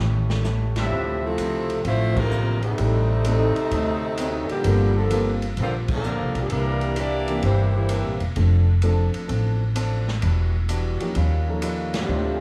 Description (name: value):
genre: jazz, big band swing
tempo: 129 BPM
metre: 4/4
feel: swing 68% on 8ths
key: D minor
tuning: A4 = 442 Hz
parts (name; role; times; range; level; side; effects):
- picked swing-style acoustic guitar; accompaniment; 0.0-12.4 s; G2 to C#5; -35 LUFS; equal; none
- upright bass; bass; 0.0-12.4 s; E1 to Eb2; -25 LUFS; equal; none
- warm baby grand piano; accompaniment; 0.3-12.1 s; E3 to A4; -32 LUFS; equal; none
- swinging big-band drum kit; drums; 0.3-12.0 s; crash cymbal, hi-hat, kick drum, ride cymbal, snare drum; -34 LUFS; equal; none
- clear saxophone section; melody; 0.8-8.2, 12.0-12.4 s; F3 to D5; -29 LUFS; equal; none
- brilliant trombone section; second line; 0.8-8.2, 11.9-12.4 s; A2 to A4; -31 LUFS; equal; none
- clear trumpet section; stabs; 0.8-1.4 s; D4 to E5; -33 LUFS; equal; none
room: light reverb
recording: studio ambience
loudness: -22 LUFS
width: mono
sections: 0.9-12.4 A section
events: drum fill 0.0-0.5; band accent 0.7, 2.1, 5.8, 11.9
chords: 0.0 A7; 0.9 Dm9; 2.8 Am7b5; 3.7 D7b9; 4.6 Gm11; 6.5 C9; 8.4 F6; 10.2 Em9; 11.2 Eb9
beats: 0.45 | 0.92 1.38 1.85 2.31 | 2.78 3.24 3.71 4.17 | 4.64 5.10 5.57 6.04 | 6.50 6.97 7.43 7.90 | 8.37 8.83 9.30 9.77 | 10.23 10.70 11.16 11.63 | 12.10